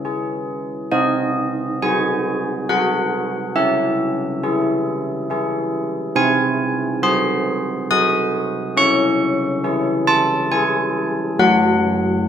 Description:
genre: classical, tune for church bells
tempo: 69 BPM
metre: 3/4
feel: straight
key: C# minor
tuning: A4 = 440 Hz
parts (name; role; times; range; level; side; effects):
- old church bells; solo; 0.0-12.3 s; F#3 to D#6; -17 LUFS; equal; none
room: moderate recital hall reverb, RT60 1.8 s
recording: close, detailed microphones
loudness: -17 LUFS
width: side -9 dB against mid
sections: 0.0-12.3 A section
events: none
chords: 0.0 C#m (rootless); 0.9 G#7/B#; 3.6 C#m; 6.2 G#7/B#; 8.8 C#m; 11.4 F#m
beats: 0.05 | 0.93 1.82 2.69 | 3.56 4.44 5.30 | 6.17 7.04 7.91 | 8.78 9.64 10.51 | 11.40

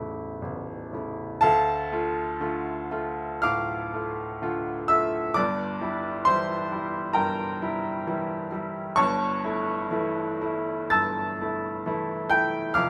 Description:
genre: classical, romantic nocturne for solo piano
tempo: 56-67 BPM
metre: 4/4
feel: rubato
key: D minor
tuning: A4 = 436 Hz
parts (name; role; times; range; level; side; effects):
- clear baby grand piano; solo; 0.0-12.9 s; A0 to A6; -27 LUFS; equal; none
room: light reverb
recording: none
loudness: -27 LUFS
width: mono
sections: 0.0-1.4 A section; 1.4-12.9 B section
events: none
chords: 0.0 A; 1.4 Dm; 5.3 Edim/G; 9.0 A7/G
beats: 0.43 | 1.42 2.40 3.44 4.41 | 5.35 6.26 7.16 8.06 | 8.98 9.91 10.93 11.86 | 12.76

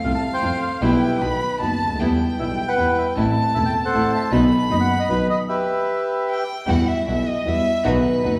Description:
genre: tango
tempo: 154 BPM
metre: 3/4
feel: rubato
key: E minor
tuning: A4 = 441 Hz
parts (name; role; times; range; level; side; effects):
- bandoneon; melody; 0.0-6.4 s; E4 to A5; -25 LUFS; equal; none
- warm violin; second line; 0.0-8.4 s; B4 to B5; -27 LUFS; equal; none
- dark concert grand piano; accompaniment; 0.0-8.4 s; E1 to A4; -25 LUFS; equal; none
- rich chamber string section; stabs; 0.0-8.4 s; F#3 to F#4; -32 LUFS; equal; none
- dark double bass; bass; 0.0-8.4 s; E1 to F2; -28 LUFS; equal; none
room: wet recital hall reverb, RT60 1.7 s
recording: recorded in a church or concert hall, small room ambience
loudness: -20 LUFS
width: mono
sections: 0.0-6.7 A section; 6.7-8.4 B section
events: stop 5.5-6.7; violin solo 6.7-8.4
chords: 0.0 F; 0.8 Em/B; 1.2 B; 2.0 Em; 3.2 Am; 4.3 B; 5.5 Em; 6.7 Emadd9; 7.8 B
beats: 0.04 0.42 | 0.81 1.20 1.60 | 2.00 2.39 2.78 | 3.16 3.55 3.94 | 4.32 4.71 5.09 | 5.49 5.88 6.28 | 6.67 7.06 7.45 | 7.84 8.23

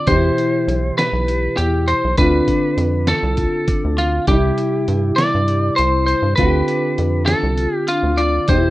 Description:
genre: progressive instrumental, band music in an uneven meter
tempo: 200 BPM (eighths)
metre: 7/8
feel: straight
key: D dorian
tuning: A4 = 441 Hz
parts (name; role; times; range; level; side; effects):
- lightly driven lead guitar; melody; 0.0-8.7 s; F4 to D5; -19 LUFS; equal; none
- mellow electric guitar; second line; 0.0-8.7 s; D4 to G4; -25 LUFS; left 5 dB; none
- barky tine electric piano; accompaniment; 0.0-8.7 s; B2 to G4; -23 LUFS; right 4 dB; overdrive
- vibraphone with medium hard mallets; arpeggios; 0.1-8.7 s; D4 to G4; -26 LUFS; left 5 dB; none
- rubbery square bass; bass; 0.1-8.7 s; B1 to G2; -19 LUFS; equal; none
- lo-fi sampler-style drum kit; drums; 0.1-8.6 s; hi-hat, kick drum, snare drum; -22 LUFS; equal; none
room: light reverb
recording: rough home demo mix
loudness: -15 LUFS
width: side -16 dB against mid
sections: 0.0-8.7 A section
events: none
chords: 0.1 Em; 2.2 Dm7; 4.3 C; 6.4 Dm7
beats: | 0.07 0.38 0.68 0.98 1.28 1.58 1.88 | 2.18 2.48 2.78 3.08 3.38 3.68 3.98 | 4.29 4.59 4.89 5.19 5.49 5.79 6.09 | 6.39 6.69 6.99 7.29 7.59 7.90 8.20 | 8.50

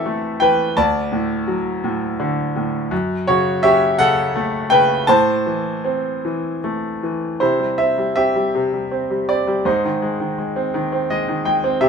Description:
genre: classical, lyrical solo piano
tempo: 50-57 BPM (dotted quarters)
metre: 6/8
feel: rubato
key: A dorian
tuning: A4 = 440 Hz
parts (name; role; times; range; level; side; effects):
- bright concert grand piano; solo; 0.0-11.9 s; D2 to A5; -16 LUFS; equal; none
room: moderate studio reverb, RT60 0.6 s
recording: minimal, uncompressed stereo recording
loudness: -16 LUFS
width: side -6 dB against mid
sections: 0.0-7.4 A section; 7.4-11.9 B section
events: grand piano fill 10.7-11.8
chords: 0.0 Am; 0.8 D; 2.9 F#m; 5.1 Am; 7.4 C; 9.7 Ab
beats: | 0.76 1.83 | 2.92 3.99 | 5.08 6.23 | 7.40 8.54 | 9.66 10.74 | 11.81

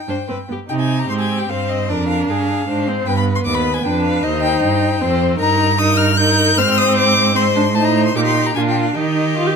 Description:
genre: quick classical-period movement for string quartet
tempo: 152 BPM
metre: 3/4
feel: straight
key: C minor, Eb major from 5.4 s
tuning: A4 = 440 Hz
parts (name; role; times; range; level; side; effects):
- clear violin; melody; 0.0-9.6 s; D5 to G6; -20 LUFS; left 4 dB; none
- rich violin; second line; 0.1-9.6 s; F4 to C5; -22 LUFS; left 7 dB; none
- rich viola; accompaniment; 0.1-9.6 s; B3 to G4; -20 LUFS; equal; none
- clear cello; bass; 0.1-9.6 s; Eb2 to Eb3; -19 LUFS; right 5 dB; none
room: moderate stone room reverb, RT60 1.1 s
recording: none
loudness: -14 LUFS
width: side -6 dB against mid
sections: 0.7-9.6 A section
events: none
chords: 0.3 G; 0.7 Cm; 1.9 Ddim/F; 3.1 G; 4.2 Cm/Eb; 5.4 Eb/G; 6.6 Ab; 7.8 Adim; 8.2 Eb/Bb; 8.6 Bb; 9.0 Eb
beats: 0.29 | 0.70 1.10 1.49 | 1.89 2.28 2.68 | 3.06 3.46 3.85 | 4.24 4.62 5.01 | 5.40 5.79 6.19 | 6.58 6.97 7.36 | 7.76 8.15 8.55 | 8.96 9.37

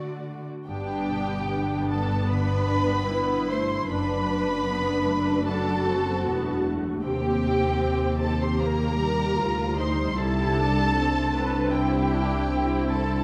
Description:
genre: cinematic, emotional film score for orchestra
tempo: 76 BPM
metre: 4/4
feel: rubato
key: G major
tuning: A4 = 442 Hz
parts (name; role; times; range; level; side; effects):
- muted symphonic violin section; melody; 0.0-13.2 s; D5 to C6; -33 LUFS; equal; none
- muted symphonic violin section; second line; 0.0-13.2 s; F#4 to D5; -34 LUFS; equal; none
- muted symphonic viola section; accompaniment; 0.0-13.2 s; G3 to B4; -31 LUFS; equal; none
- concert harp; arpeggios; 0.0-13.2 s; F#2 to C5; -33 LUFS; equal; none
- muted symphonic cello section; bass; 0.0-13.2 s; C2 to D3; -34 LUFS; equal; none
- muted chamber double bass section; bass; 0.7-13.2 s; E1 to Eb2; -33 LUFS; equal; none
room: wet concert hall reverb, RT60 2.3 s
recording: none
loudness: -25 LUFS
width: mono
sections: 0.7-13.2 A section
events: none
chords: 0.0 D7; 0.7 Gadd9; 3.9 D/F#; 7.0 Eb6; 10.2 Cadd9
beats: | 0.68 1.49 2.29 3.10 | 3.90 4.68 5.48 6.27 | 7.05 7.83 8.61 9.40 | 10.18 10.96 11.73 12.51

